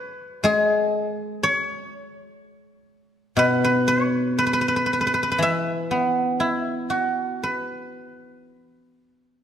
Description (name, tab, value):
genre	chinese traditional, Chinese solo plucked strings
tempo	47-63 BPM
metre	4/4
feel	rubato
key	E gong mode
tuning	A4 = 444 Hz
part	guzheng	solo	0.0-9.4 s	B2 to E5	-20 LUFS	equal	none
room	moderate scoring stage reverb, RT60 1.9 s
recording	lossy compression artefacts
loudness	-20 LUFS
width	side -9 dB against mid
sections	0.0-9.4 A section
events	none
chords	none